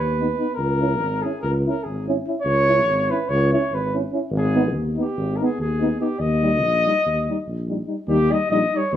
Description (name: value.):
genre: balkan folk, Balkan brass band.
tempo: 288 BPM (eighths).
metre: 9/8.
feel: straight.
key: Eb phrygian dominant.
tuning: A4 = 440 Hz.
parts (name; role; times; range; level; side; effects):
dark cornet; melody; 0.0-9.0 s; G4 to Eb5; -22 LUFS; equal; none.
mellow tuba; bass; 0.0-9.0 s; Ab1 to Eb2; -23 LUFS; equal; none.
mellow euphonium; accompaniment; 0.2-9.0 s; G3 to Db4; -27 LUFS; right 4 dB; none.
warm euphonium; accompaniment; 0.2-9.0 s; Eb4 to Fb4; -28 LUFS; left 5 dB; none.
room: wet studio reverb, RT60 0.8 s.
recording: band playing live in one room.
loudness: -19 LUFS.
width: side -10 dB against mid.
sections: 0.0-8.1 A section.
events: none.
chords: 0.0 Abm (rootless); 0.6 Dbm; 4.3 Abm; 6.2 Eb.